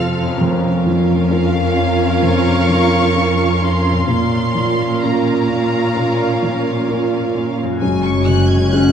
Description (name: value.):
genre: cinematic.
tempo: 65 BPM.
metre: 4/4.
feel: rubato.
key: Bb minor.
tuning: A4 = 440 Hz.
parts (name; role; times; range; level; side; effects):
warm studio violin section; melody; 0.0-8.9 s; F5 to F6; -23 LUFS; left 1 dB; none.
rich studio violin section; second line; 0.0-8.9 s; A4 to Ab6; -22 LUFS; left 1 dB; none.
dark studio viola section; accompaniment; 0.0-8.9 s; C4 to F4; -21 LUFS; right 2 dB; none.
felt-muted upright piano; accompaniment; 0.0-8.9 s; F2 to Bb4; -20 LUFS; right 1 dB; none.
concert harp; arpeggios; 0.0-8.9 s; F2 to Bb4; -25 LUFS; left 5 dB; none.
warm studio cello section; bass; 0.0-8.9 s; F2 to Bb2; -20 LUFS; right 1 dB; none.
warm French horn section; sustained chords; 7.8-8.9 s; Ab3 to Gb4; -20 LUFS; left 3 dB; none.
warm studio double bass section; bass; 7.8-8.9 s; Gb1; -18 LUFS; right 1 dB; none.
clear clarinet; second line; 8.7-8.9 s; Db4; -14 LUFS; left 3 dB; none.
room: wet recital hall reverb, RT60 1.8 s.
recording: recorded in a church or concert hall.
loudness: -13 LUFS.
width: side -8 dB against mid.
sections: 0.0-7.8 A section; 7.8-8.9 A section.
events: none.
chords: 0.4 Bbm/F; 4.1 Bbm; 7.8 Gbsus2.